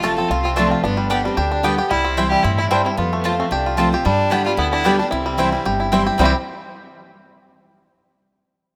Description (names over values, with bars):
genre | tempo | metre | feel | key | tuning
bluegrass | 224 BPM | 4/4 | straight | C major | A4 = 440 Hz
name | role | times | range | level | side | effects
bluegrass banjo | melody | 0.0-6.4 s | G3 to G4 | -24 LUFS | equal | none
picked steel-string acoustic guitar | accompaniment | 0.0-6.3 s | F2 to G4 | -25 LUFS | equal | none
mandolin | stabs | 0.0-6.3 s | B3 to A5 | -27 LUFS | equal | none
upright bass | bass | 0.0-6.3 s | F1 to G2 | -27 LUFS | equal | none
clear fiddle | melody | 0.2-6.3 s | B3 to A4 | -26 LUFS | equal | none
room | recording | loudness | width
moderate lush hall reverb, RT60 2.5 s | rough home demo mix | -18 LUFS | mono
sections
0.0-6.2 A section; 6.2-7.3 B section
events
none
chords
0.0 F; 0.8 G; 1.9 C; 3.0 F; 4.1 G; 5.1 C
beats
0.04 0.30 0.57 | 0.84 1.11 1.38 1.64 | 1.91 2.18 2.45 2.71 | 2.98 3.25 3.52 3.79 | 4.05 4.32 4.59 4.86 | 5.12 5.39 5.66 5.92 | 6.19